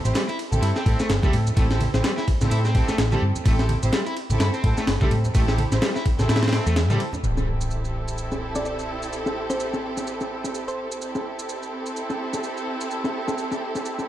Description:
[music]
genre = breakbeat, breaks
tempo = 127 BPM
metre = 4/4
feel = swing 58% on 16ths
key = A minor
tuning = A4 = 440 Hz
[part]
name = rich studio string section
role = stabs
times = 0.1-14.1 s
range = C4 to C5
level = -29 LUFS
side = right 2 dB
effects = vintage 12-bit sampler grit, tape echo
[part]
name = hollow-body short-scale picked electric bass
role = bass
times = 0.1-14.1 s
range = G1 to A2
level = -23 LUFS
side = equal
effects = low-pass filter
[part]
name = breakbeat sampler-style drum kit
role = drums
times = 0.1-14.1 s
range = kick drum, ride cymbal, snare drum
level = -25 LUFS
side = equal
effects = low-pass filter on snare, small room reverb, low-pass filter on cymbals, low-pass filter on kick
[part]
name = shaker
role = drums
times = 0.1-14.1 s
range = none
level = -39 LUFS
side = right 3 dB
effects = small room reverb
[part]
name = overdriven semi-hollow guitar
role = riff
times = 0.2-7.0 s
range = G3 to E4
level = -30 LUFS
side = left 1 dB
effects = vintage 12-bit sampler grit, tape echo
[part]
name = congas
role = percussion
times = 0.5-7.2 s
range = none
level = -31 LUFS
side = right 1 dB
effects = none
[part]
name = impact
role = sound effects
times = 7.2-9.1 s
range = none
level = -30 LUFS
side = equal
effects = none
[part]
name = thumb-piano-like synth pluck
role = melody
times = 8.6-11.3 s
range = C5 to D5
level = -33 LUFS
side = right 1 dB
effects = chorus, phaser, telephone sound, cassette tape, tape echo
[sound]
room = little or no reverb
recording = dark, warm production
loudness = -21 LUFS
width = side -13 dB against mid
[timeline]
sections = 0.0-7.2 A section; 7.2-14.1 B section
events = impact 7.2-9.1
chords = 0.0 Am7

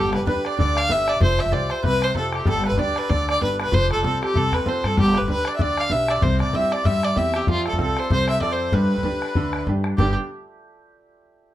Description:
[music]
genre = celtic folk, Celtic reel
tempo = 192 BPM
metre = 4/4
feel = swing 57% on 8ths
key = G mixolydian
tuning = A4 = 438 Hz
[part]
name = dark fiddle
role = melody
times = 0.0-10.1 s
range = F4 to F5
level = -23 LUFS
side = left 1 dB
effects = none
[part]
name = accordion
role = second line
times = 0.0-10.1 s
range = F4 to F5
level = -31 LUFS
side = left 1 dB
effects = light tremolo tuning
[part]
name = hammered dulcimer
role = second line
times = 0.0-10.9 s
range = F4 to F5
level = -31 LUFS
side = right 5 dB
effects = none
[part]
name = bright upright piano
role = accompaniment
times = 0.0-10.2 s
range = G2 to C5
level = -29 LUFS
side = right 3 dB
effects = none
[part]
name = upright bass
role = bass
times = 0.0-10.1 s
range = F1 to G2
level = -24 LUFS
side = equal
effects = none
[part]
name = bodhran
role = percussion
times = 0.1-10.1 s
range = none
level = -25 LUFS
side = left 2 dB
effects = none
[sound]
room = moderate studio reverb, RT60 0.5 s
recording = none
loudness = -18 LUFS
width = side -13 dB against mid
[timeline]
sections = 0.0-10.0 A section; 10.0-11.2 B section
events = none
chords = 0.0 G; 1.2 Fsus2; 2.5 G; 3.7 F; 5.0 G; 6.2 C; 7.5 F; 8.7 G

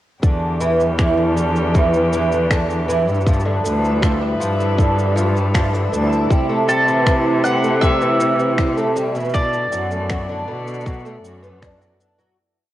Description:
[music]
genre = folktronica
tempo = 79 BPM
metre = 4/4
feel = straight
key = E minor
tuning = A4 = 441 Hz
[part]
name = warm string quartet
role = sustained chords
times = 0.2-12.3 s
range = C3 to D5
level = -28 LUFS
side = left 1 dB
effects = none
[part]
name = fingerpicked twelve-string acoustic guitar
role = arpeggios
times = 0.2-12.4 s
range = D3 to F#4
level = -20 LUFS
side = right 1 dB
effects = analog chorus, analog delay
[part]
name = warm cello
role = bass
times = 0.2-11.9 s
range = D2 to C3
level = -20 LUFS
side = equal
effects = tube saturation
[part]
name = electronic kick drum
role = drums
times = 0.2-11.8 s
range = none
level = -17 LUFS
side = equal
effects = cassette tape
[part]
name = electronic shaker and finger snaps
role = drums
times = 0.2-12.3 s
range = none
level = -28 LUFS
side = equal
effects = cassette tape
[part]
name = backwards swelling texture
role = texture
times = 2.1-12.4 s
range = E4 to E5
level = -29 LUFS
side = right 1 dB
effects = built-in reverb
[part]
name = mandolin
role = melody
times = 6.7-10.8 s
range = A4 to F#5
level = -21 LUFS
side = equal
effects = cassette tape
[sound]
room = light reverb, small room ambience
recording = home recording on cassette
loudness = -15 LUFS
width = side -14 dB against mid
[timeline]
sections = 0.2-12.4 groove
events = fade-out 8.3-12.4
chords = 0.2 Em7; 3.3 G7; 6.3 C6; 9.3 Bm7

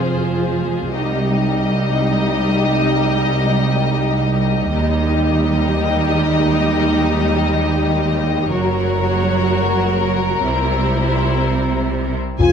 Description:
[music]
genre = cinematic, epic orchestral film score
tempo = free time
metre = none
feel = none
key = unclear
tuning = A4 = 440 Hz
[part]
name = warm studio violin section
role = second line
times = 0.0-12.5 s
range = G4 to Eb5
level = -21 LUFS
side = left 5 dB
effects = none
[part]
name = warm symphonic viola section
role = accompaniment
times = 0.0-12.5 s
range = F3 to Ab4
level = -20 LUFS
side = equal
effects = none
[part]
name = rich studio cello section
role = bass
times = 0.0-12.5 s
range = C2 to C3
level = -22 LUFS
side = right 2 dB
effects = none
[part]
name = warm symphonic double bass section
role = bass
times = 0.0-12.5 s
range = F1 to Eb2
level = -21 LUFS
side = right 3 dB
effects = none
[part]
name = warm symphonic violin section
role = melody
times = 12.4-12.5 s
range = Ab5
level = -23 LUFS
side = left 6 dB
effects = none
[part]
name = mellow French horn section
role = sustained chords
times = 12.4-12.5 s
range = F4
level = -12 LUFS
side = left 2 dB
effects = none
[part]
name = taiko ensemble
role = drums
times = 12.4-12.5 s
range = none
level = -19 LUFS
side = left 2 dB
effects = none
[part]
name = timpani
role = percussion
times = 12.4-12.5 s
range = F2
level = -16 LUFS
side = left 2 dB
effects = none
[sound]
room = moderate scoring stage reverb, RT60 1.7 s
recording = none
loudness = -15 LUFS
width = side -7 dB against mid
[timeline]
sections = 0.0-12.4 A section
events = build-up 0.0-12.4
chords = 0.0 Fm; 0.9 Cm; 4.7 Eb; 8.5 Gb; 10.5 C7

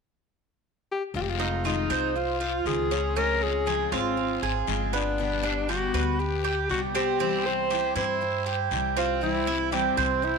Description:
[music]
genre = latin, Cuban son and guajira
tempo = 119 BPM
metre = 4/4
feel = straight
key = F minor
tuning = A4 = 440 Hz
[part]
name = warm alto saxophone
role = melody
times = 0.9-10.4 s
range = C4 to C5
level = -28 LUFS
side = left 4 dB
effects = none
[part]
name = picked steel-string acoustic guitar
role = accompaniment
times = 1.1-10.3 s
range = B2 to G4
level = -34 LUFS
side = left 12 dB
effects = none
[part]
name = upright bass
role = bass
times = 1.1-10.4 s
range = F1 to G2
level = -32 LUFS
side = equal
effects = none
[part]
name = guiro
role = percussion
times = 1.1-10.4 s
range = none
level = -37 LUFS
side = left 14 dB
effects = none
[part]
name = Cuban tres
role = arpeggios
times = 1.4-10.4 s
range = B3 to C5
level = -28 LUFS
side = right 11 dB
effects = tape echo
[sound]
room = moderate echo chamber reverb, RT60 2.3 s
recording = 1960s-style stereo with parts hard left and right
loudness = -24 LUFS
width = side -5 dB against mid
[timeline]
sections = 0.0-1.1 A section; 1.1-10.4 B section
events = none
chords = 0.0 N.C.; 1.1 Fm7; 3.2 Dbmaj7; 5.2 G; 7.2 C

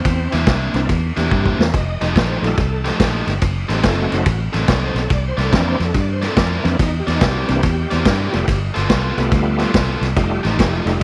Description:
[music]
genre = electric blues shuffle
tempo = 142 BPM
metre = 4/4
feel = swing 65% on 8ths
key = C mixolydian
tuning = A4 = 437 Hz
[part]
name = bright tonewheel organ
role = accompaniment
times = 0.0-11.0 s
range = E3 to Eb5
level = -26 LUFS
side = equal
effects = slow rotary speaker, chorus vibrato
[part]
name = fingered electric bass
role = bass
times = 0.1-11.0 s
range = F1 to G2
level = -22 LUFS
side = equal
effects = none
[part]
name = vintage drum kit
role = drums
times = 0.1-10.9 s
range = kick drum, ride cymbal, snare drum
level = -22 LUFS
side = equal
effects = none
[part]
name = biting overdriven guitar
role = riff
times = 0.3-10.9 s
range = C3 to D5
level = -26 LUFS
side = equal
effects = none
[sound]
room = light reverb, small room ambience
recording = none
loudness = -18 LUFS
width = mono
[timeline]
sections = 0.0-11.0 A section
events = drum fill 1.3-1.7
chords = 0.0 C9; 1.7 F9; 3.4 F#dim7; 5.1 C9; 8.5 G9; 10.2 F9

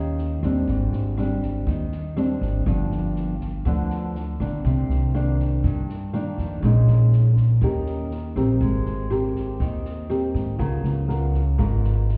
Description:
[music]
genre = bossa nova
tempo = 121 BPM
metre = 4/4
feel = straight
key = unclear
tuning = A4 = 440 Hz
[part]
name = nylon-string guitar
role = accompaniment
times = 0.0-12.2 s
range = G2 to Bb4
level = -25 LUFS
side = equal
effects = none
[part]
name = upright bass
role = bass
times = 0.0-12.2 s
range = G1 to Ab2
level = -27 LUFS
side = equal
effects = none
[part]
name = swinging big-band drum kit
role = drums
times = 0.2-12.1 s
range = kick drum, rim click, snare drum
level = -35 LUFS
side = equal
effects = none
[sound]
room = light reverb, small room ambience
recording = heard muffled through a wall, cassette tape, stone room reverb, EQ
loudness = -23 LUFS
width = mono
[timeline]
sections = 0.0-12.2 A section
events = none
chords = 0.0 Eb7; 0.7 Abmaj7#11; 2.7 G7; 4.6 Cm9; 6.6 Bbm7; 7.6 Eb7; 8.6 Abmaj9; 10.6 Db6

